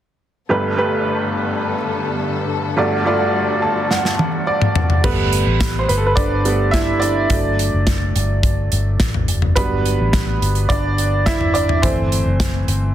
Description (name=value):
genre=piano-driven pop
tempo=106 BPM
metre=4/4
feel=straight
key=G major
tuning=A4 = 440 Hz
part: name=bright upright piano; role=accompaniment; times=0.5-12.9 s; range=G1 to A5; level=-19 LUFS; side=right 2 dB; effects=none
part: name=warm symphonic string section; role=sustained chords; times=0.5-5.0 s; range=G2 to A4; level=-25 LUFS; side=left 5 dB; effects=none
part: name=modern studio drum kit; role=drums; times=3.9-12.8 s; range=crash cymbal, hi-hat, kick drum, snare drum, toms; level=-19 LUFS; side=equal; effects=none
part: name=vintage muted fingered electric bass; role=bass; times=5.0-12.9 s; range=F#1 to A1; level=-19 LUFS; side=equal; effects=none
room=light reverb, studio reverb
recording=dense, heavily limited modern master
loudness=-15 LUFS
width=side -11 dB against mid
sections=0.5-5.0 A section; 5.0-12.9 B section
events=upright piano fill 3.3-5.0; drum fill 3.9-5.0; upright piano solo 5.0-12.9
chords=0.5 Gadd9; 2.8 D/G; 5.0 Gadd9; 7.3 D; 9.6 Em7/G; 11.8 Am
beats=| 0.50 1.06 1.63 2.20 | 2.77 3.34 3.90 4.47 | 5.04 5.61 6.17 6.74 | 7.30 7.87 8.44 9.00 | 9.57 10.13 10.70 11.27 | 11.83 12.40